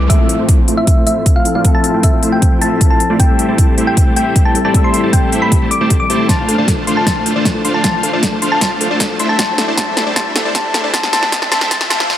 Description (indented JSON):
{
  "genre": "future bass",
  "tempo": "155 BPM",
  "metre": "4/4",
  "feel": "half-time",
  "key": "unclear",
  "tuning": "A4 = 440 Hz",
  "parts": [
    { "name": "thumb-piano-like synth pluck", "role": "melody", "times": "0.0-12.1 s", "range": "E5 to D6", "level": "-19 LUFS", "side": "left 1 dB", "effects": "chorus, vintage 12-bit sampler grit, sidechain pumping, tape echo" },
    { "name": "mellow tine electric piano", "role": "accompaniment", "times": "0.0-6.3 s", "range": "F3 to B4", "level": "-19 LUFS", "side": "left 4 dB", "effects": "ensemble chorus, sidechain pumping, tape echo" },
    { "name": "riser and swell", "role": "sound effects", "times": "0.0-12.2 s", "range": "none", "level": "-27 LUFS", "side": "equal", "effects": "none" },
    { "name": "dense compressed supersaw", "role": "riff", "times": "0.1-12.1 s", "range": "A3 to A5", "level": "-18 LUFS", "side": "equal", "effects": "sidechain pumping, low-pass filter" },
    { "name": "big-room dance drum kit", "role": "drums", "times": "0.1-12.2 s", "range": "hi-hat, snare drum", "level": "-18 LUFS", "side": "equal", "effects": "overdrive" },
    { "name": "electronic kick drum", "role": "drums", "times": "0.1-11.8 s", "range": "none", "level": "-13 LUFS", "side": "equal", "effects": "none" },
    { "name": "thumb-piano-like synth pluck", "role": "arpeggios", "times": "6.3-12.0 s", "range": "A4 to C6", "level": "-24 LUFS", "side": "left 2 dB", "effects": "chorus, sidechain pumping, tape echo" }
  ],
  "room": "light reverb, digital ambience",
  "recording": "high-pass filter",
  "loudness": "-11 LUFS",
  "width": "side -11 dB against mid",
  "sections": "0.1-12.2 A section",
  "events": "build-up 0.1-12.2; riser 0.1-12.2; filter sweep on supersaw synth 0.1-12.2; filter sweep 0.1-12.2; drum fill 6.3-12.1; swell 11.7-12.2",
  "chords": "0.1 Fmaj7; 3.2 Am7; 6.3 Dm7; 9.2 C"
}